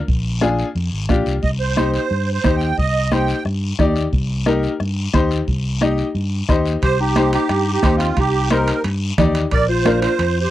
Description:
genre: latin, cumbia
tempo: 178 BPM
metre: 4/4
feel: straight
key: C minor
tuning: A4 = 439 Hz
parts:
  - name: fingered electric bass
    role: bass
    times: 0.1-10.5 s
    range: Ab1 to G2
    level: -21 LUFS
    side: equal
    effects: none
  - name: bombo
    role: percussion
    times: 0.1-10.0 s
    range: none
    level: -20 LUFS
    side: equal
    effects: none
  - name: congas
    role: percussion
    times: 0.1-10.4 s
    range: none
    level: -24 LUFS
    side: right 4 dB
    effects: none
  - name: guiro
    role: percussion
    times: 0.1-10.5 s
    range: none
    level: -32 LUFS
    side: left 6 dB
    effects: none
  - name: bright upright piano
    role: accompaniment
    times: 0.4-10.1 s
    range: D4 to Eb5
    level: -20 LUFS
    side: left 4 dB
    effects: none
  - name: musette accordion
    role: melody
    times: 1.4-3.4, 6.8-10.5 s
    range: F4 to G5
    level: -20 LUFS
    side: right 6 dB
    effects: none
  - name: breathy clarinet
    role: second line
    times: 6.8-10.5 s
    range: C4 to Bb4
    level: -23 LUFS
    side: left 4 dB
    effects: none
  - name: timbales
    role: percussion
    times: 6.8-10.4 s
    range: none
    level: -31 LUFS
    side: right 4 dB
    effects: none
room: light reverb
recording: dry, close 1970s-style studio recording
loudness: -16 LUFS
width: side -14 dB against mid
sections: 0.0-6.8 A section; 6.8-10.5 A section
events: upright piano fill 6.3-6.8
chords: 0.0 Bb; 1.4 Cm; 9.5 Bb

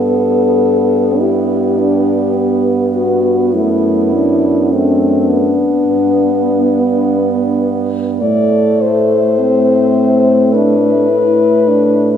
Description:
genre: classical, lyrical piece for horn quartet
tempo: 52 BPM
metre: 4/4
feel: rubato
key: G major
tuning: A4 = 438 Hz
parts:
  - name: mellow French horn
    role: melody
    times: 0.0-12.2 s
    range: D4 to D5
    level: -14 LUFS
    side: left 5 dB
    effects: none
  - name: warm French horn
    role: second line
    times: 0.0-12.2 s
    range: A3 to B3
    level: -18 LUFS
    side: right 7 dB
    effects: none
  - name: mellow French horn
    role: accompaniment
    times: 0.0-12.2 s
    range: A3 to E4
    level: -16 LUFS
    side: equal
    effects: none
  - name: mellow French horn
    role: bass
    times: 0.0-12.2 s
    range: F#2 to A2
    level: -18 LUFS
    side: right 3 dB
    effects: none
room: moderate concert hall reverb, RT60 2.1 s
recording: minimal, uncompressed stereo recording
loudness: -10 LUFS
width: side -8 dB against mid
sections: 0.0-12.2 A section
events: none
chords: 0.0 G; 3.5 D/F#; 5.9 G; 8.2 Am

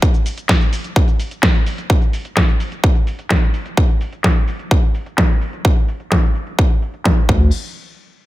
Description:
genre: EDM, festival progressive house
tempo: 128 BPM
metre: 4/4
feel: straight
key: unclear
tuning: A4 = 441 Hz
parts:
  - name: big-room dance drum kit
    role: drums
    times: 0.0-7.4 s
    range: crash cymbal, hi-hat, shaker, snare drum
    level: -21 LUFS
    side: equal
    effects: overdrive, low-pass filter on hats, low-pass filter on perc, low-pass filter on snare, low-pass filter on cymbals
  - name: electronic kick drum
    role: drums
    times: 0.0-7.4 s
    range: none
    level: -14 LUFS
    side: equal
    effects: none
  - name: saturated sub bass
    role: bass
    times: 7.3-7.5 s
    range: D2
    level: -14 LUFS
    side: equal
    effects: sidechain pumping
room: digital ambience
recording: none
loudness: -14 LUFS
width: side -17 dB against mid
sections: 0.0-7.5 A section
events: filter sweep on drum 0.0-7.5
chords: none

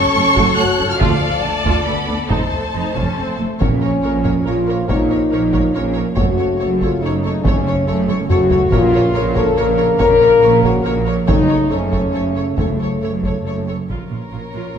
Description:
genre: cinematic, epic orchestral film score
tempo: 140 BPM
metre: 3/4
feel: straight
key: Bb harmonic minor from 3.6 s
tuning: A4 = 440 Hz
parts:
  - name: warm symphonic violin section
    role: melody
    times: 0.0-14.8 s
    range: Db5 to F#6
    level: -24 LUFS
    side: left 2 dB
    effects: none
  - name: warm symphonic violin section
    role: second line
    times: 0.0-14.8 s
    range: A4 to D5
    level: -25 LUFS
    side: left 2 dB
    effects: none
  - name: warm French horn section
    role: sustained chords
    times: 0.0-14.8 s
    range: F3 to Bb4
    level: -18 LUFS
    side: left 3 dB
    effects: none
  - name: warm symphonic double bass section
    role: bass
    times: 0.1-14.8 s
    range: F1 to D2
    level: -23 LUFS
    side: right 4 dB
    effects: none
  - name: warm symphonic viola section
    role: accompaniment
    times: 0.2-14.8 s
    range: A3 to Bb4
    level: -27 LUFS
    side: right 2 dB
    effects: none
  - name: rich symphonic cello section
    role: bass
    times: 0.2-14.8 s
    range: D2 to Bb2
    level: -24 LUFS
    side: right 3 dB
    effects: none
  - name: taiko ensemble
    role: drums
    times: 0.4-14.7 s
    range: none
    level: -21 LUFS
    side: equal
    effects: none
  - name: clear trombone section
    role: sustained chords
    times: 3.6-13.6 s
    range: Db3 to Bb3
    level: -25 LUFS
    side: right 4 dB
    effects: none
  - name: timpani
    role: percussion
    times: 8.7-9.3, 13.9-14.5 s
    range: Bb2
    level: -28 LUFS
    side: equal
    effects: none
room: wet recital hall reverb, RT60 1.4 s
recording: recorded in a church or concert hall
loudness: -14 LUFS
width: side -8 dB against mid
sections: 0.0-3.6 A section; 3.6-13.9 B section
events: drum fill 8.1-8.7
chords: 0.0 F#m; 1.0 Dm; 2.3 F7; 3.6 Bbm; 6.2 Gbm; 8.7 Bbm; 11.3 Gbm; 13.9 Bbm

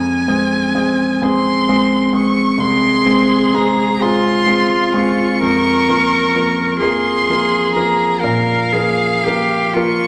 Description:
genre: classical, slow romantic movement for piano trio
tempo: 42 BPM (dotted quarters)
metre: 12/8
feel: rubato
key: F minor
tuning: A4 = 440 Hz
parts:
  - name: rich violin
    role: melody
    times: 0.0-10.1 s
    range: F5 to Db6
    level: -21 LUFS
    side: equal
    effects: none
  - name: warm grand piano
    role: accompaniment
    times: 0.0-10.1 s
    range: C2 to Bb4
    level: -18 LUFS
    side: equal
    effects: none
  - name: rich cello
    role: second line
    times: 2.6-10.1 s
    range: F4 to Bb4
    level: -20 LUFS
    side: equal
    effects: none
room: wet recital hall reverb, RT60 1.5 s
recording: none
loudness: -15 LUFS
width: mono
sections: 0.0-10.1 A section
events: none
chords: 0.0 Fm; 5.4 Bbm/F

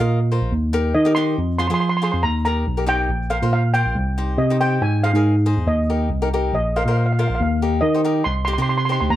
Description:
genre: calypso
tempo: 140 BPM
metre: 4/4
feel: straight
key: Eb major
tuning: A4 = 441 Hz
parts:
  - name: steel pan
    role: melody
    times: 0.0-9.2 s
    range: Eb5 to C6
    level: -23 LUFS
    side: right 1 dB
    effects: none
  - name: cavaquinho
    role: accompaniment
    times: 0.0-9.1 s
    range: Eb4 to Eb5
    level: -26 LUFS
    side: left 3 dB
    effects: none
  - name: mellow tine electric piano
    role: bass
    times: 0.0-9.2 s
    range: Bb1 to F3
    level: -19 LUFS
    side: equal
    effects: wide subtle chorus
room: light reverb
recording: none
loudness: -17 LUFS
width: side -13 dB against mid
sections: 0.0-9.2 A section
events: none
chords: 0.0 Bbsus2; 0.5 Eb; 1.4 Fm; 2.2 Eb; 3.1 Bbsus2; 4.0 Cm; 4.8 Ab6; 5.7 Eb; 6.5 Bbsus2; 7.4 Eb; 8.3 Cm

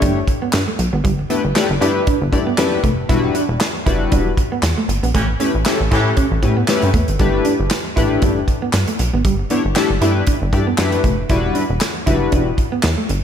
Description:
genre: early-eighties boogie funk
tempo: 117 BPM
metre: 4/4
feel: swing 56% on 16ths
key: unclear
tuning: A4 = 436 Hz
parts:
  - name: chorused polysynth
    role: accompaniment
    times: 0.0-12.5 s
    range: G3 to D5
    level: -20 LUFS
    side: left 4 dB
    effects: slapback echo
  - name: semi-hollow electric guitar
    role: riff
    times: 0.0-13.1 s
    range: G3 to E4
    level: -23 LUFS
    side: right 4 dB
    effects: lush chorus, slapback echo
  - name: plucky analog bass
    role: bass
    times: 0.0-13.2 s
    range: E1 to A2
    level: -19 LUFS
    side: equal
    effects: none
  - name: modern studio drum kit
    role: drums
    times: 0.0-13.2 s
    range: handclaps, hi-hat, kick drum, snare drum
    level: -20 LUFS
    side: equal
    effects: none
  - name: warm horn section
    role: second line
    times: 5.1-6.1 s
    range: E3 to G4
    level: -25 LUFS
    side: right 1 dB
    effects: slapback echo
room: light reverb, studio ambience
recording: none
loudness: -15 LUFS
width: side -8 dB against mid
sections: 0.0-13.2 A section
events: band accent 5.1-7.2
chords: 0.0 G69; 3.1 Em9; 5.1 A9; 7.2 G69; 11.3 Em9

